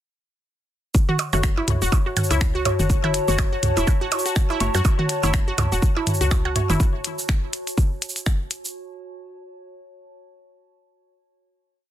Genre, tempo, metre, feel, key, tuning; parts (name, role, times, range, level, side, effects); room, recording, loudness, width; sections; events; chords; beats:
minimal techno; 123 BPM; 4/4; swing 57% on 16ths; F# minor; A4 = 440 Hz
electronic kick drum; drums; 0.9-8.4 s; -20 LUFS; equal
minimal click drum kit; drums; 0.9-8.7 s; finger snaps, hi-hat, shaker; -28 LUFS; equal; soft clipping on snare
warbly tape-like pad; texture; 0.9-8.8 s; F#4 to A5; -29 LUFS; left 1 dB; chorus, built-in reverb, sidechain pumping
resonant blip pluck; riff; 1.1-6.7 s; E4 to F#4; -28 LUFS; left 1 dB; chorus, sidechain pumping, ping-pong delay
electronic toms and percussion blips; percussion; 1.1-6.8 s; -25 LUFS; right 2 dB; overdrive, ping-pong delay
filtered dub chord stab; stabs; 1.3-6.7 s; A3 to C#5; -31 LUFS; equal; phaser, analog chorus, ping-pong delay
woody FM bass; bass; 1.3-6.8 s; E1 to F#2; -24 LUFS; equal; sidechain pumping
light reverb; dense, heavily limited modern master; -19 LUFS; side -12 dB against mid
0.9-8.8 drop
drop 0.9-8.8
0.9 F#m
| 0.95 1.43 1.92 2.41 | 2.90 3.38 3.87 4.36 | 4.85 5.34 5.82 6.31 | 6.80 7.29 7.78 8.26